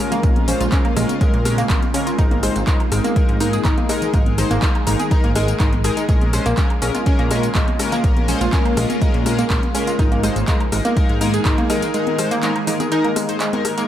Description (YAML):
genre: progressive house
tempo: 123 BPM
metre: 4/4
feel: straight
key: unclear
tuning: A4 = 443 Hz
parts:
  - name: shimmering ambient pad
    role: sustained chords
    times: 0.0-13.9 s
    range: Db3 to Ab4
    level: -25 LUFS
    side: right 2 dB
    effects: chorus, built-in reverb, phaser, sidechain pumping
  - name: chorused polysynth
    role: stabs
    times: 0.0-13.9 s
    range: Ab3 to C5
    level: -24 LUFS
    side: left 4 dB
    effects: sidechain pumping, analog delay
  - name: wide unison pluck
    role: arpeggios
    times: 0.1-13.9 s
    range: Ab3 to Ab4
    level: -24 LUFS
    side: right 1 dB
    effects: sidechain pumping, analog delay
  - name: deep house drum kit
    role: drums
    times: 0.1-13.9 s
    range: handclaps, hi-hat, tambourine, woodblock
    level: -27 LUFS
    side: equal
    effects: overdrive, sidechain pumping on hats, small room ambience, sidechain pumping on perc
  - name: electronic congas and rim click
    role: percussion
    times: 0.1-13.8 s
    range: none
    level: -30 LUFS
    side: left 2 dB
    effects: none
  - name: plucky analog bass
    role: bass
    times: 0.2-11.5 s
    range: Ab1 to Bb2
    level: -22 LUFS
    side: equal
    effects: tube saturation, sidechain pumping
  - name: electronic kick drum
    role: drums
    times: 0.2-11.6 s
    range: none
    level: -18 LUFS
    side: equal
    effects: overdrive, small room ambience
room: light reverb, digital ambience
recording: none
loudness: -15 LUFS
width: side -11 dB against mid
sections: 0.0-13.9 A section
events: drop 0.0-13.9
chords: 0.0 Bbm7; 2.2 Absus2; 6.1 Bbm7; 10.0 Absus2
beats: | 0.23 0.72 1.21 1.70 | 2.19 2.67 3.16 3.65 | 4.14 4.62 5.11 5.60 | 6.09 6.58 7.06 7.55 | 8.04 8.53 9.02 9.50 | 9.99 10.48 10.97 11.45 | 11.94 12.43 12.92 13.40